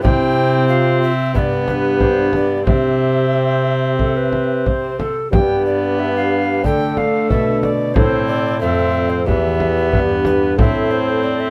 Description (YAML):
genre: classical, renaissance-style consort dance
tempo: 91 BPM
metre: 4/4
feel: straight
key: unclear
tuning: A4 = 440 Hz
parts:
  - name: mellow tenor recorder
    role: melody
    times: 0.0-11.5 s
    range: B4 to G5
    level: -25 LUFS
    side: equal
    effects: none
  - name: mellow hollow tenor recorder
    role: second line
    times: 0.0-11.5 s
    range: E4 to C5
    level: -24 LUFS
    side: equal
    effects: none
  - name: concert harp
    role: accompaniment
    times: 0.0-11.5 s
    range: E2 to B4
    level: -24 LUFS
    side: equal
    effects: none
  - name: warm viola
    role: accompaniment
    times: 0.0-11.5 s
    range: A3 to C4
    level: -25 LUFS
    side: equal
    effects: none
  - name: mellow bassoon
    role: bass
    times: 0.0-11.5 s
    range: E2 to D3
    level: -22 LUFS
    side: equal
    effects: none
  - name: frame drum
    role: percussion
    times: 0.0-10.9 s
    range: none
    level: -21 LUFS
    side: equal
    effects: none
room: moderate stone room reverb, RT60 1.4 s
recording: close, detailed microphones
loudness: -17 LUFS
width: mono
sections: 0.0-11.5 A section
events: none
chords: 0.0 C; 1.3 G; 2.7 C; 5.3 G; 6.6 D5; 8.0 Am; 9.3 Em; 10.6 Am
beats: | 0.04 0.69 1.35 2.01 | 2.67 3.33 4.00 4.66 | 5.32 5.99 6.65 7.30 | 7.96 8.61 9.27 9.93 | 10.58 11.24